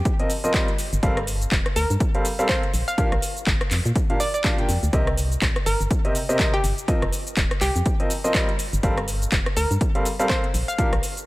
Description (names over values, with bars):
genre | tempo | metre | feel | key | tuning
piano house | 123 BPM | 4/4 | swing 58% on 16ths | unclear | A4 = 440 Hz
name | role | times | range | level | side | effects
hollow square pluck | melody | 0.0-11.0 s | G4 to F5 | -29 LUFS | equal | chorus, tape echo
electronic kick drum | drums | 0.1-10.9 s | none | -24 LUFS | equal | overdrive
house drum kit | drums | 0.1-11.3 s | handclaps, hi-hat, rim click, shaker | -27 LUFS | equal | overdrive
clear grand piano | riff | 0.2-10.9 s | Bb2 to G5 | -26 LUFS | equal | sidechain pumping, tape echo
organ-like FM bass | bass | 0.9-11.0 s | Eb1 to Bb2 | -24 LUFS | equal | sidechain pumping
room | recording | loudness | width
digital ambience | none | -20 LUFS | side -19 dB against mid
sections
0.0-11.3 A section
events
none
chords
0.0 F7sus4; 0.8 Gm11; 2.7 Bb6; 4.9 Cm7; 6.9 F7sus4; 8.6 Gm11; 10.5 Bb6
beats
0.05 0.54 | 1.03 1.52 2.00 2.49 | 2.98 3.47 3.96 4.44 | 4.93 5.42 5.91 6.39 | 6.88 7.37 7.86 8.35 | 8.83 9.32 9.81 10.30 | 10.79